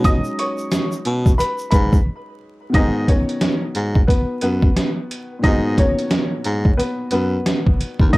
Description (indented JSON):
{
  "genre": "hip hop, boom-bap hip-hop",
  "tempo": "89 BPM",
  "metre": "4/4",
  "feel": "swing 60% on 16ths",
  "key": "G# minor",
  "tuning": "A4 = 440 Hz",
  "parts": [
    { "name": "warm upright piano", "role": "melody", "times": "0.0-8.2 s", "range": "B3 to D#6", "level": "-23 LUFS", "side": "left 1 dB", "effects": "high-pass filter, low-pass filter, tape echo" },
    { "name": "warm upright piano", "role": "accompaniment", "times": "0.0-8.2 s", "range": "A#2 to D#4", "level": "-27 LUFS", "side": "equal", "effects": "cassette tape, high-pass filter, low-pass filter" },
    { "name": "warm baritone saxophone", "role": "bass", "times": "0.0-8.2 s", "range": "C#2 to B2", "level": "-21 LUFS", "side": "equal", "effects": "none" },
    { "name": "trip hop sampler-style drum kit", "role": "drums", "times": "0.0-8.2 s", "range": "hi-hat, kick drum, snare drum", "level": "-16 LUFS", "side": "equal", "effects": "overdrive" },
    { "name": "tube shaker", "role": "percussion", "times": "0.0-2.1 s", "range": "none", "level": "-40 LUFS", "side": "right 3 dB", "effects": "none" }
  ],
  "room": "light reverb",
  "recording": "dark, warm production, vinyl crackle",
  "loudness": "-16 LUFS",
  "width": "side -21 dB against mid",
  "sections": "0.0-2.7 A section; 2.7-8.2 B section",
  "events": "break 2.1-2.7",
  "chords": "0.0 B6; 2.7 G#m7",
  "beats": "| 0.04 0.72 1.39 2.07 | 2.74 3.42 4.09 4.76 | 5.44 6.11 6.79 7.46 | 8.13"
}